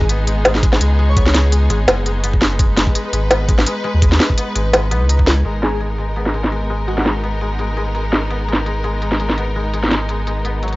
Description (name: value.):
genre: half-time drum and bass.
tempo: 168 BPM.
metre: 4/4.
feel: swing 55% on 16ths, half-time.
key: G# minor.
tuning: A4 = 441 Hz.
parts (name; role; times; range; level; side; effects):
airy dreamy lead; melody; 0.0-1.3, 5.6-7.0 s; F#4 to C#5; -28 LUFS; left 1 dB; chorus, vintage 12-bit sampler grit, analog delay.
rich studio string section; sustained chords; 0.0-10.8 s; G#3 to B4; -24 LUFS; left 1 dB; sidechain pumping.
koto; arpeggios; 0.0-10.8 s; F#3 to G#4; -26 LUFS; left 3 dB; low-pass filter, tape echo.
saturated sub bass; bass; 0.0-10.8 s; F#1 to D#2; -18 LUFS; equal; none.
electronic kick drum; drums; 0.0-5.3 s; none; -16 LUFS; equal; studio reverb.
organic electronic drum kit; drums; 0.1-10.8 s; crash cymbal, hi-hat, snare drum; -16 LUFS; equal; low-pass filter on hats, studio reverb, low-pass filter on snare, low-pass filter on cymbals.
room: digital ambience.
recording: dry, gritty hardware recording, cassette tape, nothing above 7.6 kHz.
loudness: -14 LUFS.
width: side -20 dB against mid.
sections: 0.0-5.5 A section; 5.5-10.8 B section.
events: drop 0.0-5.5; filter sweep on drum 5.5-10.8; filter sweep on koto 5.5-10.8.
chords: 0.0 G#m; 5.5 G#madd9.